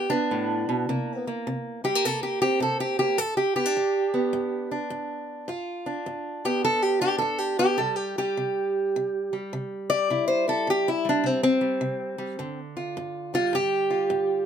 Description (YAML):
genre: acoustic country blues, solo or duo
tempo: 104 BPM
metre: 4/4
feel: swing 64% on 8ths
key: G mixolydian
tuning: A4 = 440 Hz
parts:
  - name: fingerpicked steel-string acoustic guitar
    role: solo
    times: 0.0-14.5 s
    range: G2 to D5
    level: -23 LUFS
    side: right 1 dB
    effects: none
room: light reverb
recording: none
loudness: -23 LUFS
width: side -8 dB against mid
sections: 0.0-14.5 A section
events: steel-string acoustic guitar solo 0.0-14.5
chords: 0.0 G; 0.9 C5; 3.2 G7; 7.8 C; 12.4 G7(no3)